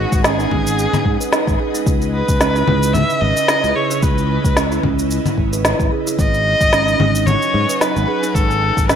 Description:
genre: organic downtempo.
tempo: 111 BPM.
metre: 4/4.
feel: swing 56% on 16ths.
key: C# minor.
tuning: A4 = 440 Hz.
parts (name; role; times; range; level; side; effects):
rich kamancheh; melody; 0.0-9.0 s; F#4 to E5; -19 LUFS; equal; ping-pong delay.
ethereal airy pad; sustained chords; 0.0-9.0 s; C#3 to G#5; -25 LUFS; right 1 dB; ensemble chorus, built-in reverb, sidechain pumping.
kalimba; arpeggios; 0.0-9.0 s; C#4 to B4; -23 LUFS; right 6 dB; ping-pong delay.
sustaining fretless electric bass; bass; 0.0-9.0 s; G#1 to G#2; -20 LUFS; left 1 dB; wide subtle chorus, sidechain pumping.
electronic kick drum; drums; 0.1-8.9 s; none; -19 LUFS; left 1 dB; none.
electronic shaker, snare drum and congas; drums; 0.1-9.0 s; none; -19 LUFS; left 2 dB; gated reverb.
room: moderate plate reverb, RT60 1.5 s.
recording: bright 1980s-style digital production.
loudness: -14 LUFS.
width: side -8 dB against mid.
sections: 0.0-9.0 A section.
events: none.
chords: 0.0 G#m7; 1.9 C#m7; 6.2 G#m7.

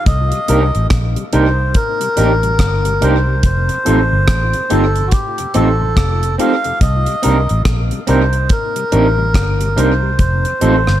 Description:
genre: lovers rock reggae.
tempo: 71 BPM.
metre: 4/4.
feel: swing 61% on 16ths.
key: C dorian.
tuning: A4 = 439 Hz.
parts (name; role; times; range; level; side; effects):
melodica; melody; 0.0-11.0 s; F#4 to F5; -19 LUFS; equal; tape echo.
vintage muted fingered electric bass; bass; 0.1-11.0 s; F1 to C2; -15 LUFS; equal; none.
deep reggae drum kit; drums; 0.1-11.0 s; hi-hat, kick drum, rim click; -17 LUFS; equal; gated reverb.
mellow tonewheel organ; accompaniment; 0.3-11.0 s; F2 to F4; -26 LUFS; left 6 dB; chorus vibrato, stopped rotary speaker, tape echo.
barky tine electric piano; accompaniment; 0.5-10.8 s; C4 to Bb4; -23 LUFS; left 3 dB; medium stereo tremolo.
electric guitar through a small old amp; stabs; 0.5-10.8 s; C4 to Bb4; -20 LUFS; right 6 dB; tremolo.
room: light reverb.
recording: none.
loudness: -12 LUFS.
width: side -12 dB against mid.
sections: 0.0-11.0 A section.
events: none.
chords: 0.1 Cm7; 3.4 F7; 6.8 Cm7; 10.2 F7.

